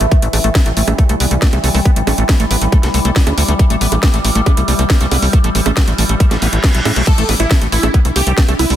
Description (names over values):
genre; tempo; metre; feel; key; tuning
psychedelic trance; 138 BPM; 4/4; straight; A minor; A4 = 441 Hz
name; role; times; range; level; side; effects
overtone-sweeping drone; sustained chords; 0.0-8.8 s; E3 to E4; -20 LUFS; left 1 dB; chorus, built-in reverb, sidechain pumping
liquid acid bass; riff; 0.0-8.7 s; A3 to B3; -22 LUFS; moving between left 5 dB and right 6 dB; chorus, auto-pan, vintage 12-bit sampler grit, sidechain pumping, ping-pong delay
tight sequencer bass; bass; 0.0-8.8 s; A1 to A2; -15 LUFS; equal; none
garage drum kit; drums; 0.0-8.8 s; bongos, crash cymbal, hi-hat, snare drum; -19 LUFS; right 2 dB; small room ambience
electronic kick drum; drums; 0.1-8.5 s; none; -11 LUFS; equal; small room ambience
reverse cymbal; sound effects; 6.4-7.1 s; none; -22 LUFS; right 2 dB; none
supersaw stab; melody; 7.1-8.8 s; E4 to A4; -19 LUFS; right 1 dB; phaser, sidechain pumping, ping-pong delay
room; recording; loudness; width
digital ambience; dense, heavily limited modern master; -11 LUFS; side -11 dB against mid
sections
0.0-8.8 A section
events
reverse cymbal 6.4-7.1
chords
0.0 A5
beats
| 0.12 0.55 0.98 1.42 | 1.85 2.29 2.72 3.16 | 3.59 4.03 4.46 4.90 | 5.33 5.77 6.20 6.64 | 7.07 7.51 7.94 8.38